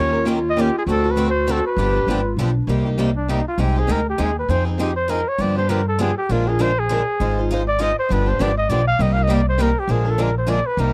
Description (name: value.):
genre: acoustic string swing (jazz manouche).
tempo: 200 BPM.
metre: 3/4.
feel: swing 58% on 8ths.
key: C minor.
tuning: A4 = 436 Hz.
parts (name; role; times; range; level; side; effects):
mellow trumpet; melody; 0.0-10.9 s; D4 to F5; -24 LUFS; equal; tape echo.
dark clarinet; second line; 0.0-2.7 s; D4 to G4; -27 LUFS; equal; none.
picked steel-string acoustic guitar; accompaniment; 0.0-10.9 s; C3 to C5; -30 LUFS; equal; none.
picked swing-style acoustic guitar; accompaniment; 0.0-10.9 s; C3 to C5; -26 LUFS; equal; none.
upright bass; bass; 0.0-10.9 s; G1 to G2; -23 LUFS; equal; none.
room: little or no reverb.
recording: dry, close 1970s-style studio recording.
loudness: -19 LUFS.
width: mono.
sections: 0.0-2.7 A section; 2.7-9.9 B section; 9.9-10.9 B section.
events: trumpet solo 2.7-10.9.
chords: 0.0 Eb7; 0.9 D7; 1.8 G7; 2.7 Cm7; 3.6 Abmaj7#11/C; 4.5 Fm7; 5.4 G7; 6.3 Bb7; 7.2 Fm7/Ab; 8.1 G7b9; 9.0 Cm7; 9.9 Bb7.